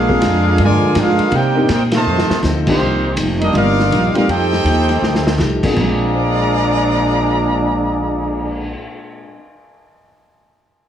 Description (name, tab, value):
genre	jazz, big band swing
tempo	163 BPM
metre	4/4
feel	swing 63% on 8ths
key	Bb mixolydian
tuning	A4 = 445 Hz
part	clear trumpet section	melody	0.0-8.7 s	Bb3 to Bb5	-18 LUFS	equal	none
part	mellow trombone section	second line	0.0-8.7 s	Bb2 to G4	-19 LUFS	right 2 dB	none
part	picked steel-string acoustic guitar	accompaniment	0.0-9.4 s	Bb2 to A4	-25 LUFS	left 3 dB	none
part	warm saxophone section	sustained chords	0.0-2.8 s	C3 to F4	-25 LUFS	right 1 dB	none
part	upright bass	bass	0.0-8.7 s	F1 to C3	-19 LUFS	equal	none
part	dark grand piano	accompaniment	0.1-9.7 s	Bb2 to C7	-22 LUFS	left 1 dB	none
part	vintage drum kit	drums	0.1-8.6 s	crash cymbal, cymbal swell, hi-hat, kick drum, ride cymbal, snare drum	-23 LUFS	equal	none
room	moderate club reverb, RT60 0.5 s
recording	heavily compressed radio sound, multiband compression, studio ambience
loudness	-13 LUFS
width	side -9 dB against mid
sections	0.0-2.8 A section; 2.8-5.8 B section; 5.8-8.7 C section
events	band accent 1.9; drum fill 2.1-2.4, 5.0-5.4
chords	0.0 Bb7; 1.3 Cm7; 2.1 F7; 2.8 Cm11; 4.3 F9; 5.8 Bb9